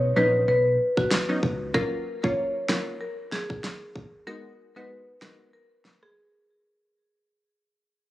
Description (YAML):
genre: dancehall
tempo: 95 BPM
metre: 4/4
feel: swing 56% on 16ths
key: unclear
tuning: A4 = 440 Hz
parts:
  - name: wavetable chord stab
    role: accompaniment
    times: 0.0-5.5 s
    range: F#3 to Gb4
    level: -30 LUFS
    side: equal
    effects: none
  - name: hollow-body short-scale fingered electric bass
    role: bass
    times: 0.0-1.7 s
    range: Bb1 to C#2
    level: -27 LUFS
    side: equal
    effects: none
  - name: marimba with medium hard mallets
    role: melody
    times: 0.2-6.1 s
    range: F#4 to Db5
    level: -25 LUFS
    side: equal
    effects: ping-pong delay
  - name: pop drum kit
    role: drums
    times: 1.0-6.2 s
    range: kick drum, rim click, snare drum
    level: -28 LUFS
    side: equal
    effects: none
room: light reverb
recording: recorded on a phone in the room, studio ambience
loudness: -23 LUFS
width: side -16 dB against mid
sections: 0.0-6.8 A section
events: fade-out 0.0-6.8; break 6.2-6.8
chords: 0.0 Badd9; 1.7 Gbmaj7; 4.3 Abm7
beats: 0.48 1.11 | 1.74 2.38 3.01 3.64 | 4.27 4.90 5.53